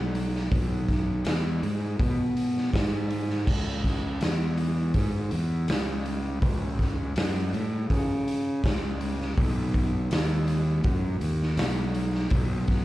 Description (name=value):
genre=stoner and doom metal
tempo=81 BPM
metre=4/4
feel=straight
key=C# minor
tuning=A4 = 440 Hz
part: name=fuzz fingered electric bass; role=bass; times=0.0-12.8 s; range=B1 to C#3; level=-27 LUFS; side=equal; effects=overdrive, tube saturation
part: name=raw garage drum kit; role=drums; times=0.1-12.8 s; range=crash cymbal, hi-hat, kick drum, snare drum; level=-27 LUFS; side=equal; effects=none
room=little or no reverb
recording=live gig heard through the venue's PA, club reverb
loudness=-24 LUFS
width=side -16 dB against mid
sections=0.0-12.8 A section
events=none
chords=none